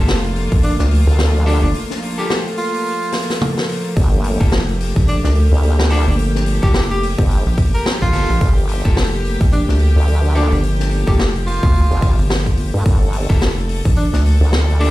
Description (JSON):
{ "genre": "glitch hop", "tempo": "108 BPM", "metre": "4/4", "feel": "swing 59% on 16ths", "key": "G minor", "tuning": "A4 = 441 Hz", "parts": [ { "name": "warm studio string section", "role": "sustained chords", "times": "0.0-14.9 s", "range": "F3 to A4", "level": "-24 LUFS", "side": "equal", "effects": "vintage 12-bit sampler grit, sidechain pumping" }, { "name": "electric guitar at the edge of break-up", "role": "stabs", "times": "0.0-14.9 s", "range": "Bb3 to A4", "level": "-27 LUFS", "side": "left 1 dB", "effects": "sidechain pumping, digital delay" }, { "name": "rubbery square bass", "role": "bass", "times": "0.0-14.4 s", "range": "F1 to D2", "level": "-16 LUFS", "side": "equal", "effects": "tube saturation" }, { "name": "swinging big-band drum kit", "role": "drums", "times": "0.1-14.9 s", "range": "hi-hat, snare drum, toms", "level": "-24 LUFS", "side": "left 1 dB", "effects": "none" }, { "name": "electronic kick drum", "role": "drums", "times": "0.5-0.6, 4.0-13.9 s", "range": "none", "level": "-16 LUFS", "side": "equal", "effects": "none" }, { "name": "warm tenor saxophone", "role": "melody", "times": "0.6-14.9 s", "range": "D4 to Bb4", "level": "-24 LUFS", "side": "right 1 dB", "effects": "digital delay" }, { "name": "formant-sweep wobble bass", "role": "bass", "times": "1.1-14.9 s", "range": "G1 to G2", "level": "-14 LUFS", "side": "equal", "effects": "chorus, tube saturation" } ], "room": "light reverb", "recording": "played on a big sound system in a bare room, large studio reverb", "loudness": "-13 LUFS", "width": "side -17 dB against mid", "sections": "0.0-14.9 A section", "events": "break 1.7-4.0; drum fill 3.1-4.0", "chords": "0.0 Gm9" }